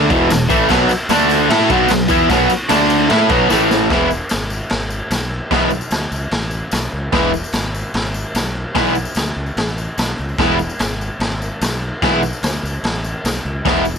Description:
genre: garage rock duo or trio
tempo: 148 BPM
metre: 4/4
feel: straight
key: E mixolydian from 3.9 s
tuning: A4 = 440 Hz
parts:
  - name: overdriven semi-hollow guitar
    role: riff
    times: 0.0-13.8 s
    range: E2 to A4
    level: -13 LUFS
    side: equal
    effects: none
  - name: fuzz fingered electric bass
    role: bass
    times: 0.0-13.9 s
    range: E1 to A2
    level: -24 LUFS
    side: equal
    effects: overdrive
  - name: raw garage drum kit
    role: drums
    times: 0.1-13.8 s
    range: crash cymbal, kick drum, ride cymbal, snare drum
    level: -19 LUFS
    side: equal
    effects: none
  - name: tambourine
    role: percussion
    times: 0.1-14.0 s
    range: none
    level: -33 LUFS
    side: left 7 dB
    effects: none
room: light reverb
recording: none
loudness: -14 LUFS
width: side -6 dB against mid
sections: 0.0-3.9 A section; 3.9-14.0 B section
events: drum fill 3.5-3.9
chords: 0.0 E5; 0.7 B5; 1.1 D5; 1.5 B5; 2.7 D5; 3.1 B5; 3.5 A5; 3.9 E

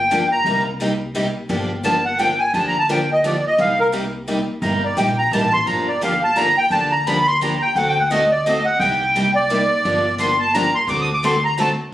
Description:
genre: acoustic string swing (jazz manouche)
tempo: 172 BPM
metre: 3/4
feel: swing 60% on 8ths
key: G minor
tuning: A4 = 440 Hz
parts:
  - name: accordion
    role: melody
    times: 0.0-11.7 s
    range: Bb4 to Eb6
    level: -17 LUFS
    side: equal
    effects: light tremolo tuning
  - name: upright bass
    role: bass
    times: 0.0-11.7 s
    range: G1 to D2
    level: -28 LUFS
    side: equal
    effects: none
  - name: picked steel-string acoustic guitar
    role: accompaniment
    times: 0.1-11.7 s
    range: C3 to A4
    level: -26 LUFS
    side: left 3 dB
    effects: none
  - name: picked steel-string acoustic guitar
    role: accompaniment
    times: 0.1-11.7 s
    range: C3 to A4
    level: -24 LUFS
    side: right 2 dB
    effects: none
room: wet studio reverb, RT60 0.7 s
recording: recorded on a phone in the room, studio reverb, compression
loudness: -16 LUFS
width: side -13 dB against mid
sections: 0.0-11.9 A section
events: accordion solo 0.0-11.9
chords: 0.4 Cm7; 1.5 Gm7; 3.6 Cm7; 5.7 Gm7; 7.8 D7; 8.8 Cm9; 9.8 Gm7; 10.9 D7

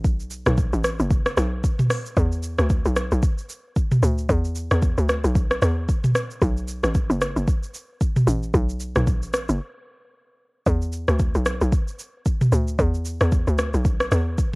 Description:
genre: amapiano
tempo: 113 BPM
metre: 4/4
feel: swing 58% on 16ths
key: unclear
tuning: A4 = 440 Hz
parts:
  - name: tight log drum bass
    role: bass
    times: 0.0-14.4 s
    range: F#1 to E2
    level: -22 LUFS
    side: equal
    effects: none
  - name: afro-pop drum kit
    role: drums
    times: 0.0-14.5 s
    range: hi-hat, kick drum, rim click, shaker, toms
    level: -22 LUFS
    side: equal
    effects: cassette tape
room: little or no reverb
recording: home recording on cassette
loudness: -20 LUFS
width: side -28 dB against mid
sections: 0.0-14.6 A section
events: break 9.6-10.7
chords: none

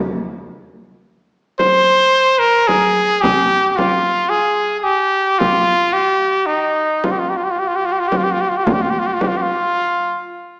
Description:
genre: Turkish makam ensemble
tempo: 110 BPM (eighths)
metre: 10/8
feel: straight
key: F makam huseyni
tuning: A4 = 441 Hz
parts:
  - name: brilliant trumpet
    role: melody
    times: 1.6-10.3 s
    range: Eb4 to C5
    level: -16 LUFS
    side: equal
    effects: none
  - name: frame drum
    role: percussion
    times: 1.6-9.5 s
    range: none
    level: -24 LUFS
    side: equal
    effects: none
room: wet scoring stage reverb, RT60 1.6 s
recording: recorded in a church or concert hall, small speaker sound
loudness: -16 LUFS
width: mono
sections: 0.0-10.6 A section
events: none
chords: none

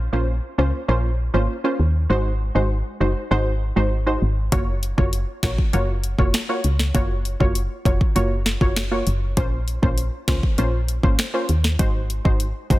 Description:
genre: dancehall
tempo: 99 BPM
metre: 4/4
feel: straight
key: Bb minor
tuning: A4 = 440 Hz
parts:
  - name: woody FM bass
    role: bass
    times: 0.0-12.8 s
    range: F1 to Eb2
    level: -21 LUFS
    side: equal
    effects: none
  - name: punchy chord stab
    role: accompaniment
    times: 0.1-12.8 s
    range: Ab3 to Db5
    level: -25 LUFS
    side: right 1 dB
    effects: chorus
  - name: afro-pop drum kit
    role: drums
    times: 4.5-12.8 s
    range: finger snaps, hi-hat, kick drum, snare drum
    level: -21 LUFS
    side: equal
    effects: soft clipping on snare
room: little or no reverb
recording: dense, heavily limited modern master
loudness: -19 LUFS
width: side -17 dB against mid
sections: 0.0-12.8 A section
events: none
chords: 0.0 Bbmadd9; 2.1 Ab7; 4.5 Gbmaj7; 9.4 Bbmadd9; 11.8 Ab7

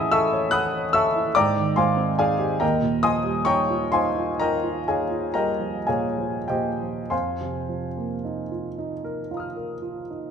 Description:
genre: classical, impressionist solo piano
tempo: 31-49 BPM (dotted quarters)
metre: 9/8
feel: rubato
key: unclear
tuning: A4 = 440 Hz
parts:
  - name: warm concert grand piano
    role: solo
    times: 0.0-10.3 s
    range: Eb2 to F#6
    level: -21 LUFS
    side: equal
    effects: none
room: moderate recital hall reverb, RT60 1.6 s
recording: close, detailed microphones, faint mains hum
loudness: -21 LUFS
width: side -7 dB against mid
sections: 0.0-10.3 A section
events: none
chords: 0.0 Amaj7; 1.4 G#maj7; 2.6 Ebadd9; 7.1 F7sus4

